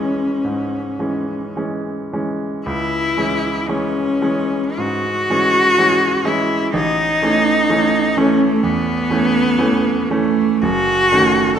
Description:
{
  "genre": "classical, romantic duo for cello and grand piano",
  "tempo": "52-65 BPM",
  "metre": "4/4",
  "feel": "rubato",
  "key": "C# minor",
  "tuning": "A4 = 440 Hz",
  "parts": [
    { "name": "clear cello", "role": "melody", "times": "0.0-11.6 s", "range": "A3 to F#4", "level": "-16 LUFS", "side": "left 1 dB", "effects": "none" },
    { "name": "bright grand piano", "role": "accompaniment", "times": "0.0-11.6 s", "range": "F#1 to C#4", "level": "-19 LUFS", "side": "right 3 dB", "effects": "none" }
  ],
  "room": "moderate scoring stage reverb, RT60 1.8 s",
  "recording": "none",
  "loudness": "-15 LUFS",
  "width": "side -8 dB against mid",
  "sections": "0.0-2.7 A section; 2.7-11.6 A section",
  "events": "none",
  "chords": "0.0 C#m; 6.7 A; 10.6 D#m7b5/F#",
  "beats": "0.44 1.56 | 2.67 3.69 4.79 5.78 | 6.74 7.70 8.64 9.58 | 10.62 11.57"
}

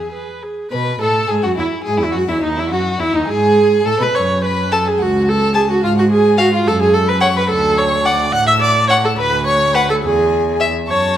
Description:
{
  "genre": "quick classical-period movement for string quartet",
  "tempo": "71 BPM (dotted quarters)",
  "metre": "6/8",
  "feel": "straight",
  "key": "E major",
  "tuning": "A4 = 440 Hz",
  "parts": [
    { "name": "rich violin", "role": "second line", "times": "0.0-11.2 s", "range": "D#4 to A5", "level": "-20 LUFS", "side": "left 2 dB", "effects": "none" },
    { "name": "clear viola", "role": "accompaniment", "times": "0.0-11.2 s", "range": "D#4 to F#5", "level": "-15 LUFS", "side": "right 2 dB", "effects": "none" },
    { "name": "rich cello", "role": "bass", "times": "0.0-11.2 s", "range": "C#2 to B2", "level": "-19 LUFS", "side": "right 2 dB", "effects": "none" },
    { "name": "rich violin", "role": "melody", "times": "0.7-11.2 s", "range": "D#5 to F#6", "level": "-24 LUFS", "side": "left 8 dB", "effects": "none" }
  ],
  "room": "moderate recital hall reverb, RT60 1.6 s",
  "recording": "none",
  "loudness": "-13 LUFS",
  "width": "side -10 dB against mid",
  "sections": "0.7-11.2 A section",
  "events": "none",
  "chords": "0.0 E; 2.4 D#m; 3.3 G#m; 4.1 F#m; 5.8 Fm/Ab; 6.7 F#madd11; 7.5 D5; 9.2 Bmadd9/D; 10.0 E",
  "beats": "| 0.71 1.58 | 2.43 3.29 | 4.14 4.99 | 5.82 6.67 | 7.51 8.35 | 9.19 10.03 | 10.89"
}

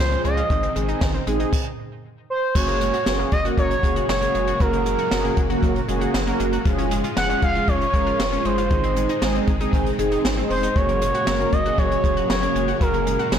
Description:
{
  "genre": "synth-pop",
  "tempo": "117 BPM",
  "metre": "4/4",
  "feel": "straight",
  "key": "unclear",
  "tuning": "A4 = 438 Hz",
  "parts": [
    { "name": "expressive portamento lead", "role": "melody", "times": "0.0-13.4 s", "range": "Bb4 to Gb5", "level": "-23 LUFS", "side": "right 1 dB", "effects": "chorus, ping-pong delay" },
    { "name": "string machine, cellos", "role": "sustained chords", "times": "0.0-13.4 s", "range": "Db3 to F5", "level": "-29 LUFS", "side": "equal", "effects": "ensemble chorus" },
    { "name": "analog pluck", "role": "arpeggios", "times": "0.0-13.4 s", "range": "Eb3 to Gb4", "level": "-31 LUFS", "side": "left 2 dB", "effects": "chorus, ping-pong delay" },
    { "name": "round analog bass", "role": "bass", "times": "0.0-13.4 s", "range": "F1 to Db2", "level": "-27 LUFS", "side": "left 1 dB", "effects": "none" },
    { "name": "mellow synth brass", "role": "accompaniment", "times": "0.1-13.4 s", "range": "Ab3 to Bb4", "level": "-26 LUFS", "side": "right 1 dB", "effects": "chorus" },
    { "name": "jazz brush drum kit", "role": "drums", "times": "0.1-13.4 s", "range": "crash cymbal, hi-hat, kick drum, snare drum", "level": "-24 LUFS", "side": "equal", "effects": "soft clipping on snare" }
  ],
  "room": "moderate digital room reverb, RT60 1.1 s, small room ambience",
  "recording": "blown-out, overdriven recording, overdrive",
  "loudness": "-18 LUFS",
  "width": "side -8 dB against mid",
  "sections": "0.0-2.6 A section; 2.6-13.4 B section",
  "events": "stop 1.5-2.6",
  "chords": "0.0 Db; 0.5 Ab; 2.6 Db/F; 8.7 Ab; 10.8 Gbadd9",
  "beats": "| 0.50 1.01 1.53 2.04 | 2.55 3.06 3.58 4.09 | 4.60 5.12 5.63 6.14 | 6.66 7.17 7.68 8.19 | 8.71 9.22 9.73 10.24 | 10.76 11.27 11.78 12.30 | 12.81 13.32"
}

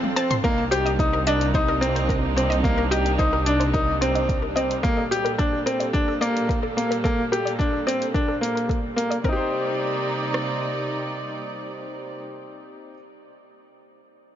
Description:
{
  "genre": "piano and strings electronica",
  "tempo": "109 BPM",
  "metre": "4/4",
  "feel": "straight",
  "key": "C dorian",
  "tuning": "A4 = 440 Hz",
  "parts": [
    { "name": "dark studio string section", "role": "sustained chords", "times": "0.0-12.2 s", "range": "Bb2 to D5", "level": "-29 LUFS", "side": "right 3 dB", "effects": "sidechain pumping" },
    { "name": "deep house drum kit", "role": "drums", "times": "0.0-9.2 s", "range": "hi-hat, toms", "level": "-32 LUFS", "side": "equal", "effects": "none" },
    { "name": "analog pluck", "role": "arpeggios", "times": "0.2-9.5 s", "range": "A4 to C6", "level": "-31 LUFS", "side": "left 1 dB", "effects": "chorus, sidechain pumping, tape echo" },
    { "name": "bright grand piano", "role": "riff", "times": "0.2-13.0 s", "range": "Bb3 to C5", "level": "-24 LUFS", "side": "left 1 dB", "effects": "tape echo" },
    { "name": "warm studio double bass section", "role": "bass", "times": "0.4-4.8 s", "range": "C2", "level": "-27 LUFS", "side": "right 1 dB", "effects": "sidechain pumping" },
    { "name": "organic electronic drum kit", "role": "drums", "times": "0.4-10.5 s", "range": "kick drum, rim click", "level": "-25 LUFS", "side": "equal", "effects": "overdrive" }
  ],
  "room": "light reverb, digital ambience",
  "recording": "nothing above 7.5 kHz",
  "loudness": "-20 LUFS",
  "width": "side -10 dB against mid",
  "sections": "0.4-9.2 A section; 9.2-11.4 B section",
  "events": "break 0.0-0.4; drum fill 0.0-0.4; filter sweep on synth arpeggio sound 0.4-9.2",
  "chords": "0.4 Cm7; 4.8 Gmadd9/Bb; 9.2 Cm7",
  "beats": "| 0.43 0.98 1.54 2.09 | 2.64 3.19 3.74 4.29 | 4.84 5.39 5.94 6.49 | 7.04 7.59 8.14 8.69 | 9.24 9.79 10.34 10.89"
}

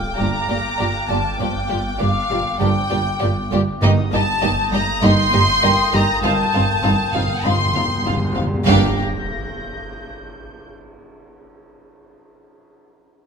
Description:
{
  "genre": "cinematic, suspense film score",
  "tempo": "99 BPM",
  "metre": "4/4",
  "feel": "straight",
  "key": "G minor",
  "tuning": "A4 = 441 Hz",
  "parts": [
    { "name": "dark studio violin section", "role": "melody", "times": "0.0-9.0 s", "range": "F5 to C6", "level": "-21 LUFS", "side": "left 1 dB", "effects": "none" },
    { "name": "warm studio cello section", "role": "riff", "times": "0.0-8.5 s", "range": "G2 to G3", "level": "-25 LUFS", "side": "right 2 dB", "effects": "none" },
    { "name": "swarming drone", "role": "drone", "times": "0.0-9.0 s", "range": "G1", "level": "-32 LUFS", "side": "equal", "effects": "built-in reverb" },
    { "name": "sub drop and impact", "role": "sound effects", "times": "0.0-1.4, 8.7-11.1 s", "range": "none", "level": "-33 LUFS", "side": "equal", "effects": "none" },
    { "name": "dark studio violin section", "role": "texture", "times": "0.0-10.7 s", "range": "G5 to Bb6", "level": "-30 LUFS", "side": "left 2 dB", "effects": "none" },
    { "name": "vibraphone with medium mallets", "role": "texture", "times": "0.0-8.7 s", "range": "Bb4 to F6", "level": "-30 LUFS", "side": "left 2 dB", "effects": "none" },
    { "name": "dark studio violin section", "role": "second line", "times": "0.2-9.0 s", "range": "F4 to F5", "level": "-26 LUFS", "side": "left 1 dB", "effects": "none" },
    { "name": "dark studio viola section", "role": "accompaniment", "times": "0.2-9.0 s", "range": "Bb3 to F4", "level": "-26 LUFS", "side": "right 1 dB", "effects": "none" },
    { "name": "mellow French horn section", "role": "sustained chords", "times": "0.2-8.9 s", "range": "D3 to F4", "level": "-30 LUFS", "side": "left 3 dB", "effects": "none" },
    { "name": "dark studio double bass section", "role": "bass", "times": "0.2-9.0 s", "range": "G1", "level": "-24 LUFS", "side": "right 3 dB", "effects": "none" },
    { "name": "warm studio cello section", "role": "bass", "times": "0.2-9.0 s", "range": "G2", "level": "-24 LUFS", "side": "right 2 dB", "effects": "none" },
    { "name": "timpani", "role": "percussion", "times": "3.8-8.9 s", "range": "G2", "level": "-26 LUFS", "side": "equal", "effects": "none" }
  ],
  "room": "moderate scoring stage reverb, RT60 1.6 s",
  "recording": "close, detailed microphones",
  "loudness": "-16 LUFS",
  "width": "side -6 dB against mid",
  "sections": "0.0-8.7 A section; 8.7-11.1 B section",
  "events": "impact 0.0-1.4, 8.7-11.1; timpani fill 6.2-8.7",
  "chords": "0.0 Gm7; 3.8 Eb/G; 6.2 F7/G; 8.7 Gm",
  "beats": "0.18 0.79 | 1.39 2.00 2.61 3.21 | 3.82 4.42 5.03 5.64 | 6.24 6.85 7.45 8.06 | 8.67 9.27 9.88 10.48"
}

